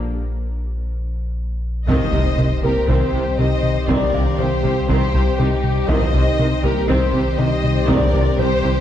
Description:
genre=cinematic, hybrid orchestral and electronic film score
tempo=120 BPM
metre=4/4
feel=straight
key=C minor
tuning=A4 = 440 Hz
part: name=warm sub bass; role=bass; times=0.0-8.8 s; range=Bb1 to C2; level=-23 LUFS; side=equal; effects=none
part: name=felt-muted upright piano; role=texture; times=0.0-8.8 s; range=C4 to F5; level=-34 LUFS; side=left 1 dB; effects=none
part: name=rich symphonic violin section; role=melody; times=1.9-8.8 s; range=Eb4 to C5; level=-30 LUFS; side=left 5 dB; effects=none
part: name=soft octave-layered synth lead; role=melody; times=1.9-8.8 s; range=G4 to Eb5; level=-24 LUFS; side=right 1 dB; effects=chorus, phaser
part: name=rich studio violin section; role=second line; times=1.9-8.8 s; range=G4 to Eb5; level=-27 LUFS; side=left 2 dB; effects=none
part: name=rich symphonic viola section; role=accompaniment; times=1.9-8.7 s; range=C3 to C4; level=-26 LUFS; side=right 1 dB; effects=none
part: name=ethereal airy pad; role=sustained chords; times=2.9-8.8 s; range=Eb3 to C5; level=-28 LUFS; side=right 1 dB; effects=ensemble chorus, built-in reverb, tremolo
part: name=warm French horn section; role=sustained chords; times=1.9-8.8 s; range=C4 to G4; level=-27 LUFS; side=left 6 dB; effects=none
part: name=rubbery square bass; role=riff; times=1.9-8.8 s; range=C2 to C3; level=-23 LUFS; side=left 2 dB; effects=none
part: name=mellow tuba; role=bass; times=1.9-8.7 s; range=C2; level=-27 LUFS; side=right 3 dB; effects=none
part: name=rich symphonic cello section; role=bass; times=1.9-8.7 s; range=C3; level=-28 LUFS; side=right 2 dB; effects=none
part: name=rich symphonic double bass section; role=bass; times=1.9-8.7 s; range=C2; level=-26 LUFS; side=right 3 dB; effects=none
part: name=taiko ensemble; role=drums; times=1.9-8.4 s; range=none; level=-26 LUFS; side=equal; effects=none
part: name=impact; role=sound effects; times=1.9-3.9 s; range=none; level=-27 LUFS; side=equal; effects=none
room=moderate scoring stage reverb, RT60 1.7 s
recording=dark, warm production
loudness=-16 LUFS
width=side -10 dB against mid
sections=0.0-1.9 A section; 1.9-8.8 B section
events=break 0.0-1.9; drum fill 1.1-1.9; impact 1.9-3.9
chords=0.0 N.C.; 1.9 Cm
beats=0.39 0.89 1.39 | 1.89 2.39 2.89 3.39 | 3.89 4.39 4.89 5.39 | 5.89 6.39 6.89 7.39 | 7.89 8.39

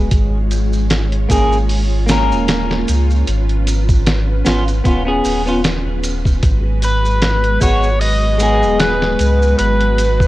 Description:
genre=trip hop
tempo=76 BPM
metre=4/4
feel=swing 56% on 16ths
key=G# dorian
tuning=A4 = 440 Hz
part: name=clean electric guitar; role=accompaniment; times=0.0-10.3 s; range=G#3 to A#4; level=-19 LUFS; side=left 1 dB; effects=harmonic tremolo, tape echo
part: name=string machine, cellos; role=sustained chords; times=0.0-10.3 s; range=G#3 to C#5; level=-24 LUFS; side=equal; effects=ensemble chorus
part: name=warm sub bass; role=bass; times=0.0-10.3 s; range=D#1 to C#2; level=-16 LUFS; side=equal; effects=none
part: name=trip hop sampler-style drum kit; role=drums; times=0.1-10.3 s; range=hi-hat, kick drum, snare drum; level=-18 LUFS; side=equal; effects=small room ambience
part: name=maracas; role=percussion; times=0.1-10.3 s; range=none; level=-32 LUFS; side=right 2 dB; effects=none
part: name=overdriven slide guitar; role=melody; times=6.8-10.3 s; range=B4 to D#5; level=-17 LUFS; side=equal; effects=dub echo
room=light reverb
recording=worn, warbling old tape, cassette tape, warbly pitch drift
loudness=-13 LUFS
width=side -16 dB against mid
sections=0.0-10.3 A section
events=none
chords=0.1 A#m7/G#; 3.3 C#7/G#; 6.4 G#m7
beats=| 0.11 0.90 1.69 2.48 | 3.27 4.06 4.85 5.64 | 6.43 7.22 8.01 8.80 | 9.59

